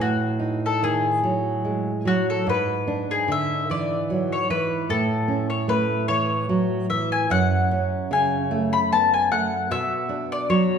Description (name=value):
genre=romantic duo for mandolin and classical guitar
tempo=50 BPM (dotted quarters)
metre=6/8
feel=rubato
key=unclear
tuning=A4 = 440 Hz
part: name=mandolin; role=melody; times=0.0-10.8 s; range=F#4 to B5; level=-23 LUFS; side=left 4 dB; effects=none
part: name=nylon-string guitar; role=accompaniment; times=0.0-10.8 s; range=F#2 to D#4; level=-23 LUFS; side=right 3 dB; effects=none
room=wet recital hall reverb, RT60 1.7 s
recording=recorded in a church or concert hall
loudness=-20 LUFS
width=side -7 dB against mid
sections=0.0-10.8 A section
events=none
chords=0.0 F#m69/A; 2.5 E7/G#; 4.9 A; 7.3 F#m; 9.7 Bm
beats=1.24 | 2.48 3.70 | 4.91 6.09 | 7.31 8.52 | 9.71